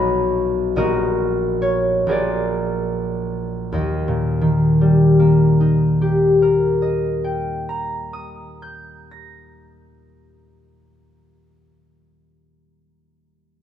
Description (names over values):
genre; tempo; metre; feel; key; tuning
classical, solo harp piece; 34-54 BPM (dotted quarters); 6/8; rubato; unclear; A4 = 441 Hz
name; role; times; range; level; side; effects
concert harp; solo; 0.0-11.8 s; Bb1 to Bb6; -16 LUFS; left 1 dB; none
room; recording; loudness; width
moderate recital hall reverb, RT60 1.5 s; minimal, uncompressed stereo recording; -16 LUFS; side -9 dB against mid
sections
0.0-3.8 A section; 3.8-10.3 B section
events
slowing down 0.0-3.8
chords
0.0 B; 0.8 Ebm/Bb; 2.1 Bb7; 3.8 Eb